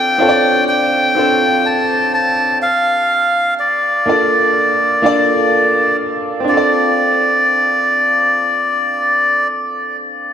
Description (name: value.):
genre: R&B.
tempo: 62 BPM.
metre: 4/4.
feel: straight.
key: D minor.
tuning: A4 = 439 Hz.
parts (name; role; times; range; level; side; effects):
melodica; melody; 0.0-9.5 s; D5 to A5; -13 LUFS; left 1 dB; diffuse ambient delay.
clear concert grand piano; accompaniment; 0.0-10.3 s; Bb3 to D5; -17 LUFS; right 1 dB; wide subtle chorus.
room: wet cathedral reverb, RT60 5.3 s.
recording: dreamy mix soaked in reverb.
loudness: -12 LUFS.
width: side -9 dB against mid.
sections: 0.0-6.5 A section; 6.5-10.3 B section.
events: none.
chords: 0.0 Dm7; 2.6 Bbmaj7; 6.5 Dm7.